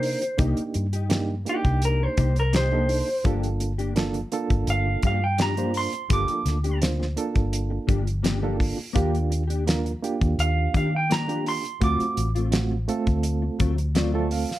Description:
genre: straight-eighth soul blues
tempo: 84 BPM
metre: 4/4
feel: straight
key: G minor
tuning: A4 = 441 Hz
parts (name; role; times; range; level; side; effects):
- electric guitar through a small old amp; melody; 0.0-12.5 s; G4 to D6; -26 LUFS; right 1 dB; none
- reed electric piano; accompaniment; 0.0-14.6 s; A3 to E#5; -29 LUFS; right 4 dB; fast tremolo
- mellow electric guitar; stabs; 0.0-14.5 s; F3 to G4; -32 LUFS; left 5 dB; ensemble chorus
- vintage muted fingered electric bass; bass; 0.0-14.4 s; G1 to Eb3; -25 LUFS; equal; none
- damped 70s drum kit; drums; 0.0-14.6 s; hi-hat, kick drum, snare drum; -26 LUFS; equal; none
room: light reverb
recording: none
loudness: -22 LUFS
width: side -15 dB against mid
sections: 0.0-14.6 A section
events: reed electric piano fill 13.6-14.6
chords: 0.0 Cm7; 3.2 Gm7; 9.0 Ebmaj7; 11.8 D7#9

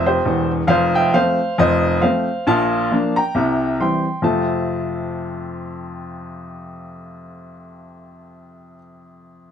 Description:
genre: jazz, stride piano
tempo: 135 BPM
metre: 4/4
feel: swing 59% on 8ths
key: F major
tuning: A4 = 438 Hz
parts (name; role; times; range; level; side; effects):
- clear upright piano; solo; 0.0-9.5 s; E1 to C6; -17 LUFS; equal; none
room: light reverb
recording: dark, warm production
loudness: -16 LUFS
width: side -8 dB against mid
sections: 0.0-4.2 A section; 4.2-7.8 B section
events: none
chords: 0.0 C/F; 0.7 F; 1.6 F7; 2.5 Bbmaj7; 3.4 C7; 4.2 F

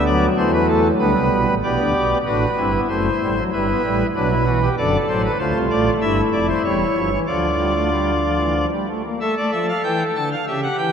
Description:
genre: classical, baroque-style 4-part fugue for pipe organ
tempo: 95 BPM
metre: 3/4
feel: straight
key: D minor from 5.4 s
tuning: A4 = 440 Hz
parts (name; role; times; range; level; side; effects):
- pipe organ, cornet; solo; 0.0-10.9 s; E1 to A5; -17 LUFS; equal; none
room: wet church reverb, RT60 3.6 s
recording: none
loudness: -17 LUFS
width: side -7 dB against mid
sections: 0.0-1.6 A section; 1.6-9.2 B section; 9.2-10.9 A section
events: none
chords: 0.0 G/D; 1.0 G; 1.6 G/B; 2.9 F#dim; 3.5 Em/G; 4.8 D/F#; 5.4 Dm; 6.0 Fmaj13; 6.6 Em6; 7.3 Dm

